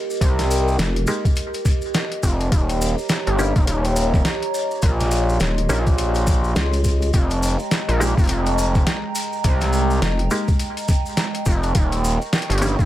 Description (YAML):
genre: glitch hop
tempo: 104 BPM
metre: 4/4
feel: swing 60% on 16ths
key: F minor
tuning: A4 = 440 Hz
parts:
  - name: dark analog pad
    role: sustained chords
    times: 0.0-12.9 s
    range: Ab3 to Db6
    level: -26 LUFS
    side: right 1 dB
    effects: chorus, phaser, sidechain pumping
  - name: muted clav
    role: stabs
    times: 0.0-12.9 s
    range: Ab3 to G4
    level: -27 LUFS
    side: equal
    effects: overdrive, vintage 12-bit sampler grit, sidechain pumping, dub echo
  - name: maracas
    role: percussion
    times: 0.1-12.9 s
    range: none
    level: -32 LUFS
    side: left 2 dB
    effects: none
  - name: gritty driven synth bass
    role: bass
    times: 0.2-12.9 s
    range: Eb1 to C2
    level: -19 LUFS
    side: equal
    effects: tube saturation
  - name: boom bap sampler-style drum kit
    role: drums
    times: 0.2-12.9 s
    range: hi-hat, snare drum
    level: -24 LUFS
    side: equal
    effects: none
  - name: electronic kick drum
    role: drums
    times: 0.2-12.9 s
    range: none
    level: -19 LUFS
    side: equal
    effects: none
  - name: vowel-sweep wobble bass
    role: bass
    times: 0.8-1.1, 5.4-10.3 s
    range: Eb1 to Db2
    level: -20 LUFS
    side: equal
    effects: chorus
room: digital ambience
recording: none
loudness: -17 LUFS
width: side -14 dB against mid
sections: 0.0-12.9 A section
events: none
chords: 0.0 Fm11; 2.5 Eb7; 7.1 Fm11; 11.8 Eb7